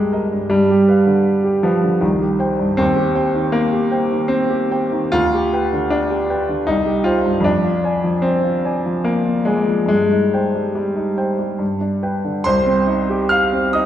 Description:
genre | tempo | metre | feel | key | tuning
classical, romantic character piece for solo piano | 69-80 BPM | 3/4 | rubato | C minor | A4 = 442 Hz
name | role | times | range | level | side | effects
clear grand piano | solo | 0.0-13.9 s | C2 to F6 | -15 LUFS | equal | none
room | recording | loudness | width
wet recital hall reverb, RT60 1.4 s | dark, warm production | -15 LUFS | side -11 dB against mid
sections
0.0-12.5 A section; 12.5-13.9 B section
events
none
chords
0.0 Cm7; 0.5 G7; 2.0 Cm; 2.8 Cm/Eb; 5.1 G7/D; 6.7 Cm; 7.5 Ddim/F; 9.9 Cm/G; 11.6 G; 12.5 Cm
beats
| 0.52 1.27 2.03 | 2.79 3.56 4.32 | 5.13 5.92 6.68 | 7.45 8.23 9.04 | 9.88 10.74 11.60 | 12.46 13.31

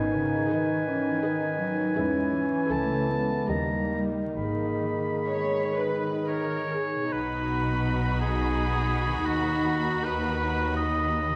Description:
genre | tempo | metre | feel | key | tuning
classical, slow romantic movement for symphony orchestra | 57-88 BPM | 3/4 | rubato | G# minor, B major from 7.1 s | A4 = 440 Hz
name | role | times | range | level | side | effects
clear oboe | second line | 0.0-11.4 s | F#4 to B5 | -33 LUFS | equal | none
mellow clarinet | second line | 0.0-6.7 s | G4 to B4 | -36 LUFS | equal | none
mellow bassoon | accompaniment | 0.0-6.7 s | D#3 to E3 | -35 LUFS | equal | none
mellow French horn section | sustained chords | 0.0-6.3 s | G#3 to D#4 | -33 LUFS | equal | none
concert harp | arpeggios | 0.0-11.4 s | G#2 to B4 | -37 LUFS | equal | none
rich studio double bass section | bass | 0.0-11.4 s | G#1 to E2 | -35 LUFS | equal | none
warm studio cello section | bass | 0.0-11.4 s | D#2 to A3 | -36 LUFS | equal | none
rich studio violin section | melody | 0.5-11.4 s | D#5 to B5 | -41 LUFS | equal | none
warm studio violin section | second line | 0.5-11.4 s | F#4 to B4 | -40 LUFS | equal | none
rich studio viola section | accompaniment | 0.5-11.4 s | D#4 to C#5 | -36 LUFS | equal | none
room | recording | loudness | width
wet concert hall reverb, RT60 1.9 s | vinyl crackle | -27 LUFS | mono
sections
0.0-7.1 A section; 7.1-11.4 B section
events
none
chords
0.0 G#m; 2.0 E; 2.7 A/C#; 3.5 D#; 4.4 G#m; 7.1 B; 9.2 B/D#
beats
0.50 1.24 | 1.97 2.71 3.48 | 4.36 5.27 6.26 | 7.12 7.85 8.55 | 9.24 10.03 10.76

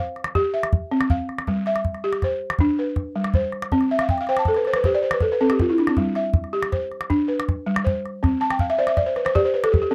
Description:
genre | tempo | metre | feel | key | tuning
west african traditional, West African string and xylophone music | 107 BPM (dotted quarters) | 12/8 | straight | unclear | A4 = 442 Hz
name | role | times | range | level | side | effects
balafon | arpeggios | 0.0-9.9 s | G3 to A5 | -23 LUFS | equal | none
calabash | percussion | 0.2-9.8 s | none | -26 LUFS | equal | none
room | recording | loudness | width
light reverb | dry, close 1970s-style studio recording | -22 LUFS | mono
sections
0.0-9.9 A section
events
balafon fill 3.9-6.0, 8.4-9.9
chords
0.0 C; 1.5 G; 3.7 C5; 6.0 G; 8.2 C5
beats
0.35 0.91 | 1.47 2.04 2.60 3.16 | 3.72 4.28 4.84 5.41 | 5.97 6.53 7.10 7.66 | 8.22 8.79 9.35 9.92

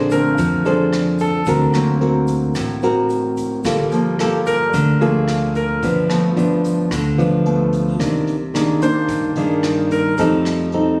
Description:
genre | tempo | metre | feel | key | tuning
bossa nova | 110 BPM | 4/4 | straight | unclear | A4 = 440 Hz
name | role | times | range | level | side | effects
clear concert grand piano | accompaniment | 0.0-11.0 s | D3 to C5 | -24 LUFS | equal | none
nylon-string guitar | accompaniment | 0.0-11.0 s | G2 to C5 | -20 LUFS | equal | none
upright bass | bass | 0.0-11.0 s | G1 to G2 | -27 LUFS | equal | none
jazz brush drum kit | drums | 0.1-10.8 s | hi-hat, kick drum, rim click | -33 LUFS | equal | none
egg shaker | percussion | 0.1-10.7 s | none | -46 LUFS | equal | none
room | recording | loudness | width
light reverb | recorded on a phone in the room, studio reverb, compression | -18 LUFS | mono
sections
0.0-11.0 A section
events
grand piano solo 0.0-11.0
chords
0.0 Bbmaj9; 1.5 D7b13; 3.6 Gm9; 5.8 G7; 8.0 Cm9; 10.2 F7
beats
0.38 0.93 | 1.47 2.02 2.56 3.10 | 3.65 4.19 4.74 5.28 | 5.83 6.37 6.92 7.46 | 8.01 8.55 9.09 9.64 | 10.18 10.72

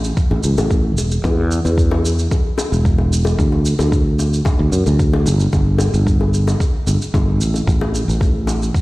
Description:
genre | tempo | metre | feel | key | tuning
sunset chillout | 112 BPM | 4/4 | straight | unclear | A4 = 441 Hz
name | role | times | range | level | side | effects
sustaining fretless electric bass | bass | 0.0-8.7 s | E1 to F#2 | -16 LUFS | equal | none
shaker | drums | 0.0-8.8 s | none | -30 LUFS | right 2 dB | none
electronic kick drum | drums | 0.2-8.8 s | none | -17 LUFS | equal | none
bongos | percussion | 0.3-8.6 s | none | -25 LUFS | left 3 dB | none
room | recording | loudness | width
little or no reverb | played on a big sound system in a bare room, large studio reverb | -14 LUFS | side -20 dB against mid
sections
0.0-8.8 A section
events
none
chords
none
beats
0.17 0.71 | 1.25 1.78 2.32 2.85 | 3.39 3.92 4.46 5.00 | 5.53 6.07 6.60 7.14 | 7.67 8.21 8.74

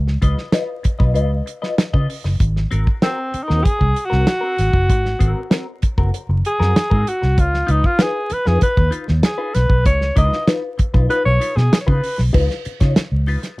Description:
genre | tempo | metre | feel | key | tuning
funk | 97 BPM | 4/4 | straight | unclear | A4 = 440 Hz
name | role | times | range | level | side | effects
vintage muted fingered electric bass | bass | 0.0-13.4 s | Gb1 to Db3 | -17 LUFS | equal | none
damped 70s drum kit | drums | 0.1-13.6 s | crash cymbal, hi-hat, kick drum, snare drum | -17 LUFS | equal | none
clean electric guitar | accompaniment | 0.2-13.5 s | C4 to Eb5 | -26 LUFS | left 4 dB | wah, spring reverb
breathy alto saxophone | melody | 3.0-12.2 s | C4 to Eb5 | -20 LUFS | equal | none
room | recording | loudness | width
little or no reverb | dry, close 1970s-style studio recording, vinyl crackle | -15 LUFS | side -22 dB against mid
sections
0.0-2.4 A section; 2.4-12.3 B section; 12.3-13.6 C section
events
alto saxophone solo 2.4-12.3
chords
0.0 Db9; 2.4 Ab9; 7.4 Db9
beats
0.54 1.16 1.78 | 2.40 3.02 3.65 4.27 | 4.89 5.51 6.13 6.75 | 7.37 8.00 8.62 9.24 | 9.86 10.48 11.10 11.72 | 12.34 12.96

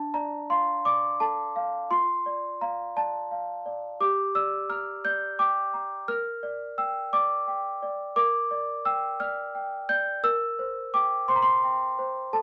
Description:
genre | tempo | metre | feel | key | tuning
classical, lullaby for celesta | 57 BPM (dotted quarters) | 6/8 | straight | unclear | A4 = 440 Hz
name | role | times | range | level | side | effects
celesta | solo | 0.0-12.4 s | D4 to G6 | -27 LUFS | equal | none
room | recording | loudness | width
moderate small room reverb, RT60 0.5 s | none | -27 LUFS | mono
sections
0.0-12.4 A section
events
none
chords
0.0 Dm; 1.9 Dm/F; 4.0 Gm; 6.1 Gm/Bb; 10.2 C7/Bb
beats
0.85 | 1.91 2.96 | 4.00 5.05 | 6.08 7.12 | 8.16 9.20 | 10.24 11.28 | 12.34

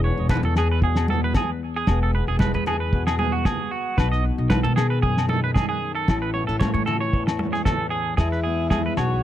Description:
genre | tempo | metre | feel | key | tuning
highlife guitar band | 114 BPM | 4/4 | swing 54% on 16ths | E major | A4 = 440 Hz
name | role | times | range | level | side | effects
nylon-string guitar | accompaniment | 0.0-9.2 s | E2 to G#4 | -28 LUFS | left 6 dB | none
clean electric guitar | arpeggios | 0.0-9.2 s | F#4 to D#5 | -27 LUFS | right 5 dB | wide subtle chorus, tape echo
upright bass | bass | 0.0-9.2 s | E1 to B2 | -24 LUFS | equal | none
congas | percussion | 0.0-9.0 s | none | -30 LUFS | right 3 dB | none
cloth-damped thuddy drum kit | drums | 0.3-9.1 s | kick drum, snare drum | -22 LUFS | equal | none
agogo bells | percussion | 0.3-9.1 s | none | -33 LUFS | left 10 dB | none
warm alto saxophone | melody | 8.2-9.2 s | E4 to F#4 | -26 LUFS | left 3 dB | none
room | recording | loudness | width
little or no reverb | dry, close 1970s-style studio recording | -20 LUFS | side -12 dB against mid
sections
0.0-8.2 A section; 8.2-9.2 B section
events
none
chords
0.0 E; 4.0 B; 6.1 A; 8.2 E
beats
0.29 0.82 1.35 | 1.87 2.40 2.92 3.45 | 3.98 4.50 5.03 5.55 | 6.08 6.61 7.13 7.66 | 8.19 8.71

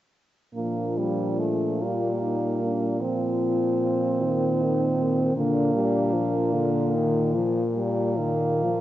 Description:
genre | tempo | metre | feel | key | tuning
classical, lyrical piece for horn quartet | 50 BPM (dotted quarters) | 6/8 | uneven beats, rubato | Bb major | A4 = 436 Hz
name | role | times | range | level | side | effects
clear French horn | second line | 0.5-8.8 s | G3 to C4 | -27 LUFS | right 3 dB | none
mellow French horn | bass | 0.5-8.8 s | Bb2 | -28 LUFS | right 1 dB | none
dark French horn | melody | 0.6-8.8 s | C4 to F4 | -31 LUFS | left 4 dB | none
mellow French horn | accompaniment | 0.6-8.8 s | D3 to G3 | -27 LUFS | left 2 dB | none
room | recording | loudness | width
moderate scoring stage reverb, RT60 2.1 s | worn, warbling old tape, cassette tape, warbly pitch drift, nothing above 7.9 kHz | -22 LUFS | side -13 dB against mid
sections
0.5-8.8 A section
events
none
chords
0.5 Bb; 3.0 F5/Bb; 5.4 Bb; 7.8 Eb/Bb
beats
| 0.55 1.81 | 3.00 4.22 | 5.36 6.54 | 7.75

